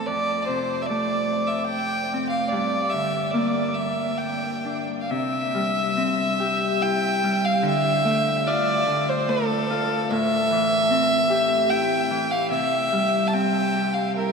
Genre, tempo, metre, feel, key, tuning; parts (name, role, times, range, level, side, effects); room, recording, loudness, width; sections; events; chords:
celtic folk, Celtic slow air; 67-76 BPM; 3/4; rubato; A4 = 440 Hz
clear fiddle; melody; 0.0-14.3 s; A4 to A5; -22 LUFS; equal; ping-pong delay
Celtic harp; accompaniment; 0.0-14.3 s; F2 to G4; -25 LUFS; left 1 dB
wet huge ambient reverb, RT60 7.2 s; dreamy mix soaked in reverb; -20 LUFS; side -5 dB against mid
0.0-5.1 A section; 5.1-14.3 B section
0.1 F; 2.5 Gm; 5.1 C; 7.6 Dm; 10.1 Am7; 12.5 C